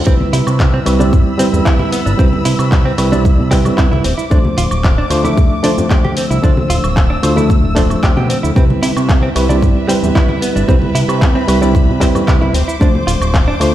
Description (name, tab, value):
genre	nu-disco, nu disco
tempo	113 BPM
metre	4/4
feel	straight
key	C major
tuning	A4 = 440 Hz
part	bright reed electric piano	accompaniment	0.0-13.7 s	F3 to E5	-16 LUFS	right 1 dB	fast tremolo, vintage 12-bit sampler grit, low-pass filter, digital delay
part	fat analog bass	bass	0.0-13.7 s	D1 to C3	-16 LUFS	equal	none
part	rich symphonic string section	sustained chords	0.1-13.7 s	B4 to E6	-25 LUFS	left 1 dB	sidechain pumping
part	direct-recorded clean electric guitar	riff	0.1-13.5 s	B3 to G4	-22 LUFS	right 3 dB	lush chorus, digital delay
part	electronic kick drum	drums	0.1-13.5 s	none	-12 LUFS	equal	none
part	house drum kit	drums	0.1-13.7 s	cabasa, handclaps, hi-hat, woodblock	-22 LUFS	equal	none
part	congas	percussion	0.2-13.5 s	none	-23 LUFS	left 2 dB	none
room	light reverb, digital ambience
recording	played on a big sound system in a bare room, stone room reverb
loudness	-10 LUFS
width	side -13 dB against mid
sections	0.0-13.7 A section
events	filter sweep on reed electric piano 0.0-13.7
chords	0.1 Cmaj7; 4.0 Dm7; 8.6 Cmaj7; 12.5 Dm7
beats	| 0.07 0.60 1.13 1.66 | 2.19 2.72 3.25 3.78 | 4.32 4.85 5.38 5.91 | 6.44 6.97 7.50 8.03 | 8.56 9.09 9.62 10.16 | 10.69 11.22 11.75 12.28 | 12.81 13.34